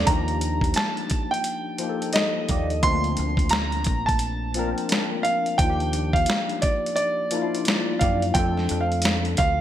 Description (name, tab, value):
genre	R&B, neo-soul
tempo	87 BPM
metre	4/4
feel	swing 61% on 16ths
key	unclear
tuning	A4 = 438 Hz
part	warm baby grand piano	melody	0.0-9.6 s	D5 to C6	-26 LUFS	right 2 dB	none
part	electric guitar at the edge of break-up	second line	0.0-2.7, 8.0-8.2 s	Bb3 to D5	-33 LUFS	right 7 dB	wah
part	barky tine electric piano	accompaniment	0.0-9.6 s	F3 to Bb4	-28 LUFS	left 4 dB	ensemble chorus
part	deep dub fingered electric bass	bass	0.0-9.6 s	Bb1 to Gb2	-26 LUFS	equal	none
part	dusty soul sampler-style drum kit	drums	0.1-9.6 s	hi-hat, kick drum, snare drum	-25 LUFS	equal	gated reverb
room	light reverb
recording	bright 1980s-style digital production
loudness	-21 LUFS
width	side -11 dB against mid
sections	0.0-9.6 A section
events	none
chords	0.1 Ebmaj9; 2.8 Bbmaj9; 5.6 Ebmaj9; 8.3 F6